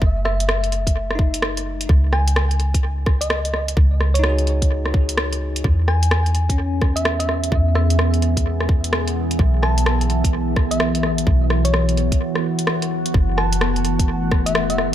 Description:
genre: future garage.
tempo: 128 BPM.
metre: 4/4.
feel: swing 63% on 16ths.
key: F# dorian.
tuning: A4 = 440 Hz.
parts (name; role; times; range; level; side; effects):
bell-like tine electric piano; accompaniment; 0.0-9.4, 13.6-14.9 s; A3 to G#4; -30 LUFS; left 5 dB; medium stereo tremolo, sidechain pumping, dub echo.
soft 808-style bass; bass; 0.0-14.9 s; F#1 to E2; -20 LUFS; equal; sidechain pumping.
electronic kick drum; drums; 0.0-14.4 s; none; -17 LUFS; equal; none.
thumb-piano-like synth pluck; melody; 0.2-14.9 s; C#5 to A5; -27 LUFS; equal; chorus, tape echo.
garage drum kit; drums; 0.3-14.9 s; hi-hat, rim click; -24 LUFS; equal; tape echo.
deep dark ambient pad; sustained chords; 7.0-14.9 s; E3 to F#5; -23 LUFS; right 1 dB; chorus, built-in reverb, sidechain pumping.
room: light reverb, digital ambience.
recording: echo-heavy mix.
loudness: -16 LUFS.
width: side -11 dB against mid.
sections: 0.0-14.9 A section.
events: break 12.2-13.1.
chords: 0.0 F#m; 1.9 C#sus2; 5.6 E; 9.4 Bsus4; 13.1 F#m7.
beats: | 0.02 0.49 0.96 1.42 | 1.89 2.36 2.83 3.30 | 3.77 4.24 4.71 5.17 | 5.64 6.11 6.58 7.05 | 7.52 7.99 8.46 8.92 | 9.39 9.86 10.33 10.80 | 11.27 11.74 12.21 12.67 | 13.14 13.61 14.08 14.55.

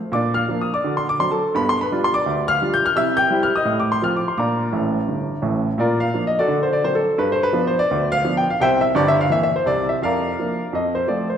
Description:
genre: jazz, stride piano.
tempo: 170 BPM.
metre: 4/4.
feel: swing 61% on 8ths.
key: Bb major.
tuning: A4 = 440 Hz.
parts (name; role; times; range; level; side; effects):
clear upright piano; solo; 0.1-11.4 s; G1 to G6; -17 LUFS; equal; none.
room: wet recital hall reverb, RT60 1.7 s.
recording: recorded in a church or concert hall.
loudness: -17 LUFS.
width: side -8 dB against mid.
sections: 0.0-5.8 A section; 5.8-11.4 A section.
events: upright piano fill 4.7-5.8.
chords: 0.1 Bb; 0.8 D7; 1.5 G7; 3.0 C; 3.7 F7/A; 4.4 Bb; 6.5 D7; 7.2 G7; 8.6 C7; 10.0 Bb/F; 10.7 F.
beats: | 0.13 0.48 0.83 1.19 | 1.54 1.89 2.24 2.60 | 2.95 3.30 3.66 4.01 | 4.37 4.72 5.07 5.42 | 5.78 6.13 6.49 6.84 | 7.19 7.55 7.90 8.25 | 8.61 8.96 9.31 9.66 | 10.02 10.37 10.72 11.07.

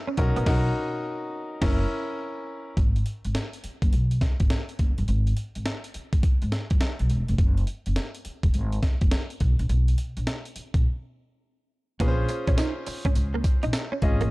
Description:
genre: R&B, new jack swing.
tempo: 104 BPM.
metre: 4/4.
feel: swing 65% on 16ths.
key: G# minor.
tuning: A4 = 440 Hz.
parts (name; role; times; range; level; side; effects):
clear concert grand piano; accompaniment; 0.0-2.8, 12.0-14.3 s; C#4 to Eb5; -30 LUFS; left 1 dB; none.
direct-recorded clean electric guitar; riff; 0.1-0.4, 12.0-14.3 s; Bb3 to Eb4; -32 LUFS; right 4 dB; ensemble chorus.
upright bass; bass; 0.2-14.3 s; E1 to G#2; -25 LUFS; equal; none.
breakbeat sampler-style drum kit; drums; 0.2-14.3 s; crash cymbal, hi-hat, kick drum, snare drum, tambourine; -25 LUFS; equal; none.
room: little or no reverb.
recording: dark, warm production.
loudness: -23 LUFS.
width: side -22 dB against mid.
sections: 0.0-2.8 A section; 2.8-12.0 B section; 12.0-14.3 A section.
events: band accent 0.5-2.8; grand piano fill 1.9-2.8; break 10.8-12.0.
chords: 0.2 Bmaj7; 1.6 F#7; 2.8 G#m7; 7.4 Eadd9 (rootless); 9.4 N.C.; 12.0 Bbm9.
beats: | 0.46 1.04 1.61 2.19 | 2.77 3.35 3.92 4.50 | 5.08 5.65 6.23 6.81 | 7.38 7.96 8.54 9.12 | 9.69 10.27 10.85 11.42 | 12.00 12.58 13.15 13.73.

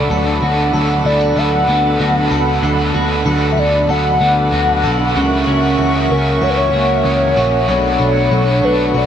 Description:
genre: dream pop.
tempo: 95 BPM.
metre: 4/4.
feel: straight.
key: D major.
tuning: A4 = 439 Hz.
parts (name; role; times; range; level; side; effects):
crunchy overdriven guitar; accompaniment; 0.0-9.1 s; B2 to A4; -20 LUFS; right 2 dB; harmonic tremolo, wide subtle chorus.
hollow soft pad; sustained chords; 0.0-9.1 s; D4 to C#6; -20 LUFS; right 1 dB; chorus.
clean electric guitar; arpeggios; 0.0-9.1 s; B2 to A4; -20 LUFS; left 2 dB; wide subtle chorus, digital delay.
vintage muted picked electric bass; bass; 0.0-9.1 s; A#1 to D2; -19 LUFS; equal; none.
warbly nostalgic lead; melody; 1.1-9.1 s; A#4 to F#5; -18 LUFS; equal; chorus, digital delay.
room: moderate shimmer reverb, RT60 4.5 s.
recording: none.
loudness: -12 LUFS.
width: side -9 dB against mid.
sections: 0.0-9.1 A section.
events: none.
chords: 0.1 D6; 5.2 F#7/C#; 7.7 Bm7.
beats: | 0.10 0.74 1.37 2.00 | 2.63 3.26 3.89 4.53 | 5.16 5.79 6.42 7.05 | 7.68 8.31 8.95.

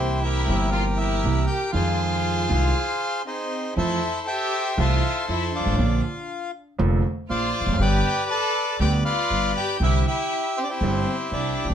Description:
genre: tango.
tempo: 119 BPM.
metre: 4/4.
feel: rubato.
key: F minor, F major from 3.8 s.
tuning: A4 = 436 Hz.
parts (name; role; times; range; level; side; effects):
bandoneon; melody; 0.0-11.7 s; Eb4 to A5; -25 LUFS; left 1 dB; none.
warm studio violin section; second line; 0.0-11.7 s; C4 to A4; -30 LUFS; left 1 dB; none.
warm concert grand piano; accompaniment; 0.0-11.7 s; F1 to G4; -26 LUFS; right 2 dB; none.
upright bass; bass; 0.0-11.7 s; E1 to F2; -24 LUFS; equal; none.
room: light reverb.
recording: none.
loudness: -21 LUFS.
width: side -9 dB against mid.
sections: 0.0-3.8 A section; 3.8-11.7 B section.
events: stop 2.8-3.8.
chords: 0.0 C7; 1.7 Fm7; 3.8 Fmaj7; 5.8 Bbadd9; 7.8 G; 9.8 Cadd9.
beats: 0.24 0.74 1.24 | 1.75 2.25 2.76 3.26 | 3.77 4.28 4.78 5.29 | 5.79 6.29 6.80 7.30 | 7.80 8.30 8.80 9.31 | 9.81 10.31 10.82 11.32.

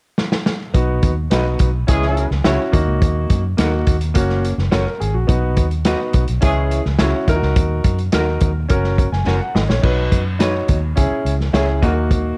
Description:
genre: uptempo 1960s-style soul.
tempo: 106 BPM.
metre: 4/4.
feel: straight.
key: unclear.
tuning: A4 = 439 Hz.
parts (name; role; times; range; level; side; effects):
vintage drum kit; drums; 0.2-12.2 s; crash cymbal, hi-hat, kick drum, snare drum; -21 LUFS; equal; none.
warm concert grand piano; accompaniment; 0.7-12.4 s; A#3 to G#5; -24 LUFS; equal; none.
vintage muted fingered electric bass; bass; 0.7-12.3 s; F#1 to F#2; -22 LUFS; equal; none.
electric guitar through a small old amp; stabs; 1.3-11.9 s; C#4 to C#5; -29 LUFS; equal; spring reverb.
clear horn section; second line; 1.9-2.3, 6.4-6.8 s; E3 to G#4; -27 LUFS; equal; none.
room: small room ambience.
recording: dark, warm production.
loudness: -17 LUFS.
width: mono.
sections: 0.7-9.8 A section; 9.8-12.4 B section.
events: drum fill 0.2-0.7, 9.3-9.8.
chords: 0.0 N.C.; 0.7 B; 1.9 C#m; 2.7 D#m; 4.2 F#; 5.3 B; 6.4 C#m; 7.3 D#m; 8.7 F#; 9.8 B; 11.0 C#m; 11.8 D#m.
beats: 0.17 | 0.74 1.31 1.88 2.45 | 3.02 3.58 4.15 4.72 | 5.29 5.86 6.42 6.99 | 7.56 8.13 8.70 9.26 | 9.83 10.40 10.97 11.54 | 12.10.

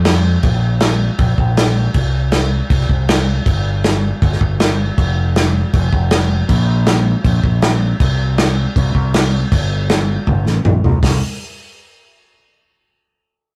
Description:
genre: indie rock.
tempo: 159 BPM.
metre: 4/4.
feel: straight.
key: unclear.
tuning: A4 = 440 Hz.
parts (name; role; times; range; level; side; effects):
growling fingered electric bass; bass; 0.0-11.2 s; F1 to F2; -18 LUFS; equal; overdrive.
unplugged drum kit; drums; 0.0-11.1 s; crash cymbal, hi-hat, kick drum, snare drum, toms; -18 LUFS; equal; none.
room: moderate booth ambience, RT60 0.2 s.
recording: rough rehearsal-room recording, warm saturation.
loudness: -15 LUFS.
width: mono.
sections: 0.0-11.0 A section; 11.0-12.5 B section.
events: drum fill 10.3-11.0.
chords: none.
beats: 0.06 | 0.44 0.82 1.20 1.57 | 1.95 2.33 2.71 3.09 | 3.46 3.84 4.22 4.60 | 4.97 5.35 5.73 6.11 | 6.49 6.87 7.24 7.62 | 8.00 8.38 8.76 9.13 | 9.51 9.89 10.27 10.65 | 11.03.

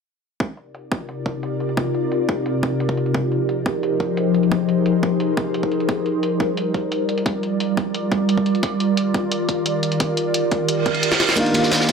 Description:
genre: liquid drum and bass.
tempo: 175 BPM.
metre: 4/4.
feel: straight.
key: C minor.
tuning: A4 = 443 Hz.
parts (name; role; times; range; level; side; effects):
ethereal airy pad; sustained chords; 1.1-11.9 s; C3 to D5; -20 LUFS; equal; ensemble chorus, built-in reverb, phaser.
electronic kick drum; drums; 0.4-11.9 s; none; -24 LUFS; right 1 dB; overdrive, high-pass filter on kick, studio ambience, high-pass filter on room.
jungle sampler-style drum kit; drums; 0.4-11.9 s; hi-hat, snare drum; -26 LUFS; equal; low-pass filter on hats, studio ambience, low-pass filter on snare, tape echo.
reverse cymbal; sound effects; 10.8-11.4 s; none; -24 LUFS; right 7 dB; none.
dark grand piano; accompaniment; 11.4-11.9 s; Bb3 to F4; -18 LUFS; equal; tape echo.
crunchy breakbeat drum kit; drums; 11.4-11.9 s; ride cymbal, snare drum; -20 LUFS; equal; high-pass filter on cymbals, studio ambience, high-pass filter on snare, high-pass filter on room, tape echo.
room: wet spring reverb, RT60 1.7 s, small room ambience.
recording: echo-heavy mix.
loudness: -18 LUFS.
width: side -5 dB against mid.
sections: 0.4-11.9 A section.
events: filter sweep on drum 0.4-11.9; reverse cymbal 10.8-11.4; drum fill 11.1.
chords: 0.4 Cm11; 3.0 Fm11; 5.9 Gm7; 8.6 Ebmaj9; 11.4 Cm11.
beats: | 0.40 0.74 1.09 1.43 | 1.77 2.12 2.46 2.80 | 3.15 3.49 3.83 4.17 | 4.52 4.86 5.20 5.54 | 5.89 6.23 6.57 6.92 | 7.26 7.60 7.95 8.29 | 8.63 8.97 9.32 9.66 | 10.00 10.35 10.69 11.03 | 11.37 11.72.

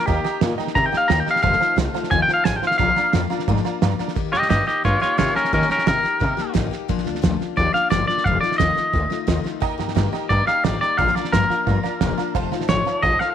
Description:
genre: rockabilly.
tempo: 176 BPM.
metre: 4/4.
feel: straight.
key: Bb major.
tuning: A4 = 442 Hz.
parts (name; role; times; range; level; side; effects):
twangy electric guitar; melody; 0.0-13.3 s; Db4 to Bb5; -20 LUFS; left 1 dB; tape echo.
picked steel-string acoustic guitar; accompaniment; 0.0-13.3 s; F2 to G4; -27 LUFS; left 12 dB; none.
honky-tonk upright piano; accompaniment; 0.1-4.1, 9.6-13.3 s; C5 to C6; -29 LUFS; right 13 dB; none.
upright bass; bass; 0.1-13.2 s; E1 to Eb3; -24 LUFS; equal; none.
cloth-damped thuddy drum kit; drums; 0.1-13.2 s; hi-hat, kick drum, snare drum; -25 LUFS; right 5 dB; none.
room: light reverb, small room reverb.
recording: 1960s-style stereo with parts hard left and right.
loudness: -17 LUFS.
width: side -9 dB against mid.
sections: 0.0-4.2 A section; 4.2-13.3 B section.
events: clean electric guitar solo 0.0-4.2.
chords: 0.1 Eb; 1.4 F7; 2.8 Bb; 4.2 Eb; 6.9 Bb; 8.3 F7; 9.6 Eb; 11.0 Bb; 12.4 F7.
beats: | 0.08 0.42 0.76 1.10 | 1.44 1.78 2.12 2.46 | 2.80 3.14 3.48 3.82 | 4.16 4.50 4.84 5.18 | 5.53 5.87 6.21 6.55 | 6.89 7.23 7.57 7.92 | 8.26 8.60 8.94 9.28 | 9.62 9.96 10.30 10.64 | 10.99 11.33 11.67 12.01 | 12.35 12.69 13.04.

